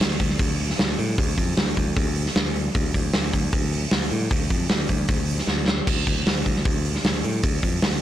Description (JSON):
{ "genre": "heavy metal", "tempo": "154 BPM", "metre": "4/4", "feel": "straight", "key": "D minor", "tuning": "A4 = 441 Hz", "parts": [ { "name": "modern bright picked electric bass", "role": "bass", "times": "0.0-8.0 s", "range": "D2 to A2", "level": "-26 LUFS", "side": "equal", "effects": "none" }, { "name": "big rock drum kit", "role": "drums", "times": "0.0-7.9 s", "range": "crash cymbal, hi-hat, kick drum, snare drum", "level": "-22 LUFS", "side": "equal", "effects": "none" } ], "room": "little or no reverb", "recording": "blown-out, overdriven recording, overdrive", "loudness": "-20 LUFS", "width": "side -12 dB against mid", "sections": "0.0-8.0 A section", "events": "drum fill 5.5-5.9", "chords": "none" }